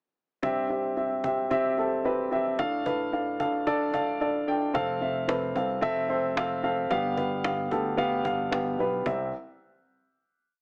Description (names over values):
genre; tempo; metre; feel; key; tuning
piano-driven pop; 111 BPM; 4/4; straight; C major; A4 = 440 Hz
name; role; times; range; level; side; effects
dark upright piano; accompaniment; 0.4-9.3 s; C2 to G5; -28 LUFS; equal; none
cajon; drums; 0.4-9.2 s; none; -39 LUFS; equal; none
fingered electric bass; bass; 4.7-9.3 s; F1 to D2; -41 LUFS; equal; none
room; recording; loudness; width
moderate large studio reverb, RT60 1.1 s; small speaker sound; -28 LUFS; mono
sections
0.4-9.1 verse; 9.1-10.6 final chord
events
none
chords
0.4 C; 2.6 Dm; 4.7 F; 6.9 G7; 9.1 C